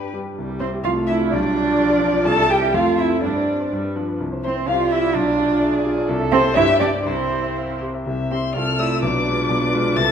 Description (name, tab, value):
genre	quick classical-period movement for piano quintet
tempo	126 BPM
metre	2/4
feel	rubato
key	C major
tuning	A4 = 441 Hz
part	muted violin	melody	0.0-10.1 s	B4 to A6	-25 LUFS	left 6 dB	none
part	muted cello	second line	0.0-10.1 s	C4 to A4	-21 LUFS	right 4 dB	none
part	muted violin	second line	0.0-10.1 s	G4 to A5	-26 LUFS	left 3 dB	none
part	clear concert grand piano	accompaniment	0.0-10.1 s	B1 to F5	-23 LUFS	left 2 dB	none
part	muted viola	accompaniment	0.0-10.1 s	F3 to B4	-27 LUFS	right 4 dB	none
room	wet recital hall reverb, RT60 1.5 s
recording	minimal, uncompressed stereo recording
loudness	-17 LUFS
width	side -8 dB against mid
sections	0.4-8.1 A section; 8.1-10.1 A section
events	none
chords	0.4 C; 0.8 Dm7/C; 1.3 Bdim; 2.3 C; 2.7 F; 3.2 Gsus4; 3.7 G; 4.2 C; 4.7 Dm7/C; 5.2 Bdim7; 6.1 C; 6.6 G5; 7.1 C; 8.5 Dm7/C; 9.0 Bdim7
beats	| 0.37 0.85 | 1.32 1.80 | 2.27 2.74 | 3.23 3.71 | 4.20 4.68 | 5.15 5.62 | 6.09 6.57 | 7.07 7.57 | 8.06 8.54 | 9.02 9.49 | 9.96